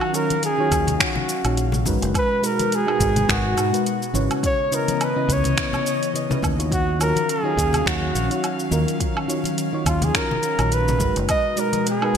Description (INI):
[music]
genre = sunset chillout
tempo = 105 BPM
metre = 4/4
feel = swing 56% on 16ths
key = Eb minor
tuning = A4 = 439 Hz
[part]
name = breathy flugelhorn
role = melody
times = 0.0-12.2 s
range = F4 to Eb5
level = -23 LUFS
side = right 1 dB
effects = ping-pong delay
[part]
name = mellow FM electric piano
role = accompaniment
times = 0.0-12.2 s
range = Db3 to F5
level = -27 LUFS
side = left 1 dB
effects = chorus, auto-pan, cassette tape, low-pass filter, ping-pong delay
[part]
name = airy breathy pad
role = sustained chords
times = 0.0-12.2 s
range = Cb3 to F5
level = -27 LUFS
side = equal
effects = chorus
[part]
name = deep house drum kit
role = drums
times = 0.0-12.2 s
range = finger snaps, hi-hat, shaker, woodblock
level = -26 LUFS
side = right 1 dB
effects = gated reverb
[part]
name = congas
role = percussion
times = 0.3-11.8 s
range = none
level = -29 LUFS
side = left 4 dB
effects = none
[part]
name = fingered electric bass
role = bass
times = 0.7-12.2 s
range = Gb1 to Ab2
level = -23 LUFS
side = equal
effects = none
[part]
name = electronic kick drum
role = drums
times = 0.7-11.4 s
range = none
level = -27 LUFS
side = equal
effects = none
[sound]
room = moderate lush hall reverb, RT60 1.7 s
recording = bright 1980s-style digital production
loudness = -19 LUFS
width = side -8 dB against mid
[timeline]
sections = 0.0-12.2 A section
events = none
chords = 0.0 Ebm9; 1.9 Abm9; 4.4 Dbm9; 6.7 Ebm9; 11.0 Abm9